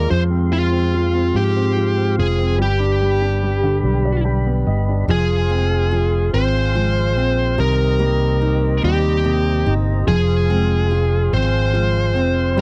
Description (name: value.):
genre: six-eight pop ballad.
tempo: 48 BPM (dotted quarters).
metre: 6/8.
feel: straight.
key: unclear.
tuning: A4 = 439 Hz.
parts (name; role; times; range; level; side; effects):
smooth overdriven lead guitar; melody; 0.0-12.6 s; F4 to C5; -23 LUFS; equal; none.
clear baby grand piano; accompaniment; 0.0-12.6 s; C3 to G5; -26 LUFS; equal; none.
tonewheel organ; sustained chords; 0.0-12.6 s; Ab3 to C6; -32 LUFS; equal; overdrive, slow rotary speaker.
fretless electric bass; bass; 0.0-12.6 s; F1 to Ab2; -21 LUFS; equal; analog chorus.
picked steel-string acoustic guitar; arpeggios; 5.1-12.6 s; Eb3 to Ab4; -29 LUFS; equal; none.
room: light reverb.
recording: dry, close 1970s-style studio recording.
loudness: -18 LUFS.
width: mono.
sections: 0.0-5.1 A section; 5.1-12.6 B section.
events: grand piano fill 3.8-5.1.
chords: 0.1 Fm; 2.6 G; 5.1 Fm; 7.6 Cm7; 10.1 Fm.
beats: | 0.11 1.35 | 2.60 3.84 | 5.09 6.34 | 7.58 8.83 | 10.08 11.32 | 12.57.